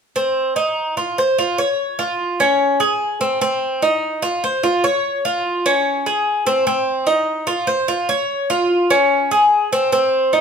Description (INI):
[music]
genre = latin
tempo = 147 BPM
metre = 4/4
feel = straight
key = F minor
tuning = A4 = 441 Hz
[part]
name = Cuban tres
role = solo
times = 0.2-10.4 s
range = C4 to Db5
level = -16 LUFS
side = equal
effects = none
[sound]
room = moderate large studio reverb, RT60 1.1 s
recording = band playing live in one room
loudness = -16 LUFS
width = side -6 dB against mid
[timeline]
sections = 0.2-10.4 A section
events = none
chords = none